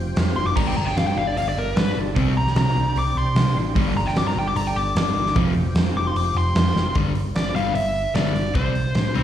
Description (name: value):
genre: hard rock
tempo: 150 BPM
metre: 4/4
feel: straight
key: unclear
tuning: A4 = 440 Hz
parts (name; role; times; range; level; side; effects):
- overdriven tonewheel organ; sustained chords; 0.0-6.9 s; F3 to D5; -32 LUFS; right 1 dB; slow rotary speaker, chorus vibrato
- hollow-body short-scale fingered electric bass; bass; 0.0-9.2 s; F1 to C3; -23 LUFS; equal; none
- big rock drum kit; drums; 0.2-9.2 s; crash cymbal, hi-hat, kick drum, snare drum; -24 LUFS; equal; none
- dark smooth lead guitar; melody; 0.4-9.2 s; Bb4 to D6; -25 LUFS; left 1 dB; overdrive, slapback echo
- overdriven electric guitar; riff; 0.6-5.5 s; F2 to C4; -27 LUFS; right 10 dB; none
- overdriven semi-hollow guitar; riff; 0.6-9.2 s; F2 to C4; -26 LUFS; left 5 dB; slapback echo
room: light reverb, studio reverb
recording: live gig heard through the venue's PA, club reverb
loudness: -19 LUFS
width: side -10 dB against mid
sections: 0.0-7.0 A section; 7.0-9.2 B section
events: lead electric guitar solo 0.0-7.0; drum fill 6.8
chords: 0.0 F5; 0.6 G5; 2.2 C5; 3.8 G5; 5.4 F5; 7.0 G5; 8.6 C5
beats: 0.17 | 0.56 0.96 1.36 1.76 | 2.16 2.56 2.96 3.36 | 3.76 4.16 4.56 4.96 | 5.36 5.76 6.16 6.55 | 6.95 7.35 7.75 8.15 | 8.55 8.95